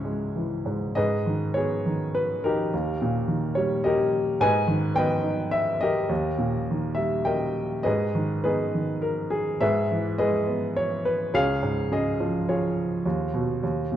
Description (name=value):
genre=classical, lyrical solo piano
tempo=104 BPM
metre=3/4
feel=rubato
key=G# harmonic minor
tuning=A4 = 440 Hz
part: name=warm upright piano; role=solo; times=0.0-14.0 s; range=C#2 to G#5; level=-23 LUFS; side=equal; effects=none
room=moderate recital hall reverb, RT60 1.4 s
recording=dark, warm production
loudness=-23 LUFS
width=side -11 dB against mid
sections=1.0-14.0 A section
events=none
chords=0.0 C#m; 1.0 G#m; 2.7 D#; 4.4 G#m; 6.1 D#; 7.9 G#m; 9.6 E/G#; 11.3 C#; 13.0 G#m/D#